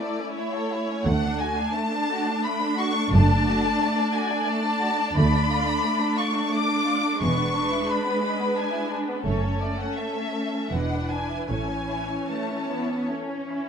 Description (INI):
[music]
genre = classical, slow romantic movement for string orchestra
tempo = 75-91 BPM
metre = 3/4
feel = rubato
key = unclear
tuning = A4 = 443 Hz
[part]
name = warm symphonic violin section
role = melody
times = 0.0-13.1 s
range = C#5 to D6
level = -28 LUFS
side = left 2 dB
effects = none
[part]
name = rich symphonic violin section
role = second line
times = 0.0-13.7 s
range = G#3 to D5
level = -30 LUFS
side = equal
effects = none
[part]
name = warm symphonic viola section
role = accompaniment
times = 0.0-13.7 s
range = E3 to E4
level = -28 LUFS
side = right 1 dB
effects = none
[part]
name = warm symphonic cello section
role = bass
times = 1.0-13.7 s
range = D2 to C#4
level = -28 LUFS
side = right 1 dB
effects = none
[part]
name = warm studio double bass section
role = bass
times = 1.1-12.1 s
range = E1 to D2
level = -25 LUFS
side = right 2 dB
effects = none
[sound]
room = moderate large studio reverb, RT60 1.3 s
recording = close, detailed microphones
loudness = -22 LUFS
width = side -7 dB against mid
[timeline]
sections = 0.0-13.7 A section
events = none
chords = 0.0 A; 1.0 D; 3.1 D/F#; 5.2 Dm; 7.2 E7; 9.3 F#m; 10.7 E7; 11.5 A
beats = 0.35 | 1.05 1.75 2.44 | 3.13 3.81 4.49 | 5.17 5.84 6.52 | 7.20 7.89 8.57 | 9.26 9.97 10.71 | 11.49 12.29 13.08